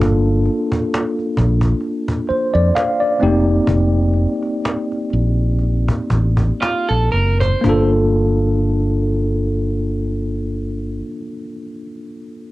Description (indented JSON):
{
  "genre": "R&B, neo-soul",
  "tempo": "57-67 BPM",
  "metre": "4/4",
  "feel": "swing 54% on 16ths",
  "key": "G minor",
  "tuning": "A4 = 440 Hz",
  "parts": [
    { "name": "tine electric piano", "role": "accompaniment", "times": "0.0-12.5 s", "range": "A3 to F5", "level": "-19 LUFS", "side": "equal", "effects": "medium stereo tremolo, cassette tape" },
    { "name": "fingered electric bass", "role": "bass", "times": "0.0-11.0 s", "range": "F1 to F2", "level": "-17 LUFS", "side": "equal", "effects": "none" },
    { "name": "cajon", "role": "drums", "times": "0.0-7.9 s", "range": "none", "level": "-23 LUFS", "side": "equal", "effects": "cassette tape" },
    { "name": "electric guitar through a small old amp", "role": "second line", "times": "6.6-7.9 s", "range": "F4 to C5", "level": "-20 LUFS", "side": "right 3 dB", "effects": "cassette tape" }
  ],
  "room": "light reverb",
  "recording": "home recording on cassette",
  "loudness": "-15 LUFS",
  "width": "side -18 dB against mid",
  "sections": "0.0-7.6 A section; 7.6-11.9 B section",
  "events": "slowing down 0.0-7.6",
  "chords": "0.0 Gm9; 3.2 F7sus4; 7.6 Gm9"
}